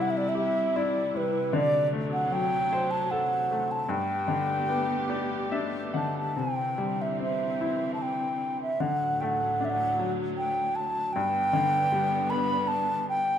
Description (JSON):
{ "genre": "celtic folk, Celtic slow air", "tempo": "76 BPM", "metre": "3/4", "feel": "rubato", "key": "G major", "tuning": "A4 = 439 Hz", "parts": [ { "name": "reedy baroque flute", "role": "melody", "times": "0.0-13.4 s", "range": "B4 to B5", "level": "-27 LUFS", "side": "right 1 dB", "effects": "none" }, { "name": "bright upright piano", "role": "accompaniment", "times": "0.0-13.4 s", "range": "G2 to F#5", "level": "-31 LUFS", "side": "left 3 dB", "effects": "none" }, { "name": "rich chamber string section", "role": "sustained chords", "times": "0.0-13.4 s", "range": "D2 to G4", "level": "-34 LUFS", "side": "right 1 dB", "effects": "none" } ], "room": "moderate recital hall reverb, RT60 1.5 s", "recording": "minimal, uncompressed stereo recording", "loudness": "-25 LUFS", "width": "side -9 dB against mid", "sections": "0.0-6.4 A section; 6.4-13.4 B section", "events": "upright piano fill 4.7-6.4", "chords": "0.0 C; 1.5 D7; 3.9 Gadd9; 6.4 Cadd9; 8.8 D; 11.1 G", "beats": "0.75 | 1.54 2.33 3.13 | 3.91 4.70 5.53 | 6.38 7.21 8.02 | 8.81 9.60 10.37 | 11.14 11.92 12.71" }